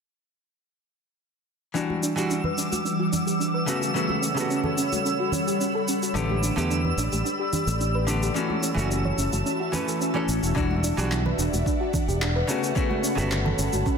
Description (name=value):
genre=sunset chillout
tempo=109 BPM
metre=4/4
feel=straight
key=E dorian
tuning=A4 = 443 Hz
part: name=archtop guitar, miked and amplified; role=accompaniment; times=1.7-14.0 s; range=C#3 to B4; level=-28 LUFS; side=moving between left 5 dB and right 2 dB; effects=auto-pan, ping-pong delay
part: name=ethereal airy pad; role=sustained chords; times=2.3-14.0 s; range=E3 to D6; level=-30 LUFS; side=equal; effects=ensemble chorus, built-in reverb
part: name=soft round pluck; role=arpeggios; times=1.7-14.0 s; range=C#4 to C#5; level=-30 LUFS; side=right 1 dB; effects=lush chorus, ping-pong delay
part: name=electronic cabasa and handclaps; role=drums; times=1.8-14.0 s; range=none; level=-32 LUFS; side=equal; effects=none
part: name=twinkling granular texture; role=texture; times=2.1-10.6 s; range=E6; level=-33 LUFS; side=right 2 dB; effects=built-in reverb
part: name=congas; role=percussion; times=1.9-13.8 s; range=none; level=-34 LUFS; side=right 3 dB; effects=none
part: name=fingered electric bass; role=bass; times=6.2-13.8 s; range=E1 to E2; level=-26 LUFS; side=equal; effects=none
part: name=electronic kick drum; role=drums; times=10.6-14.0 s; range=none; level=-27 LUFS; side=equal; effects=overdrive
room=moderate lush hall reverb, RT60 1.8 s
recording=dense, heavily limited modern master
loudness=-22 LUFS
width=side -6 dB against mid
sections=1.8-10.6 A section; 10.6-14.0 B section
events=filter sweep on synth arpeggio sound 1.8-10.6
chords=1.8 Em9; 3.7 Gmaj9#11; 6.2 A9sus4; 8.4 F#m7; 10.6 Em9; 12.5 Gmaj9#11